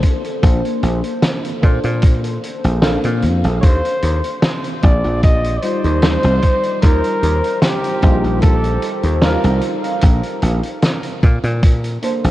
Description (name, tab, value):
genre	vaporwave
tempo	75 BPM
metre	4/4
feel	swing 53% on 16ths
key	Bb major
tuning	A4 = 439 Hz
part	FM electric piano with soft pad layer	accompaniment	0.0-12.3 s	G3 to F5	-22 LUFS	equal	lush chorus, tape echo
part	electronic kick drum	drums	0.0-11.8 s	none	-11 LUFS	equal	none
part	loose indie drum kit	drums	0.0-12.3 s	hi-hat, snare drum	-22 LUFS	equal	none
part	dry thumbed slap bass	bass	0.4-12.3 s	Bb1 to Bb2	-17 LUFS	equal	none
part	warm flugelhorn	melody	3.6-9.8 s	G4 to Eb5	-21 LUFS	equal	vintage 12-bit sampler grit, tape echo
room	moderate huge ambient reverb, RT60 7.4 s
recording	dreamy mix soaked in reverb, cassette tape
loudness	-13 LUFS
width	side -15 dB against mid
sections	0.0-12.3 A section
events	none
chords	0.0 Bbmaj9; 3.6 Eb69; 10.0 Bb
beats	| 0.43 1.23 2.03 2.83 | 3.63 4.43 5.23 6.03 | 6.83 7.63 8.43 9.23 | 10.03 10.83 11.63